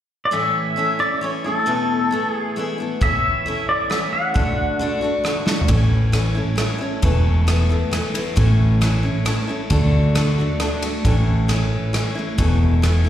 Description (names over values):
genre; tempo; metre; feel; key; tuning
folk rock and heartland rock; 135 BPM; 3/4; straight; unclear; A4 = 440 Hz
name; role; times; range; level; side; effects
pedal steel guitar; melody; 0.3-5.2 s; A4 to F#5; -21 LUFS; equal; slapback echo
picked steel-string acoustic guitar; accompaniment; 0.3-13.1 s; E2 to F#4; -23 LUFS; left 2 dB; slapback echo
natural country drum kit; drums; 3.0-12.9 s; kick drum, ride cymbal, rim click, snare drum, toms; -23 LUFS; equal; none
hollow-body short-scale fingered electric bass; bass; 5.7-13.1 s; E1 to D2; -16 LUFS; equal; none
room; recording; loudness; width
light reverb; live gig heard through the venue's PA, recital hall reverb; -17 LUFS; side -11 dB against mid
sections
0.3-5.7 A section; 5.7-13.1 B section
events
drum fill 5.5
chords
0.3 A; 1.7 Esus4; 3.0 A; 4.4 D; 5.7 A; 7.0 Esus4; 8.4 A; 9.7 D; 11.0 A; 12.4 Esus4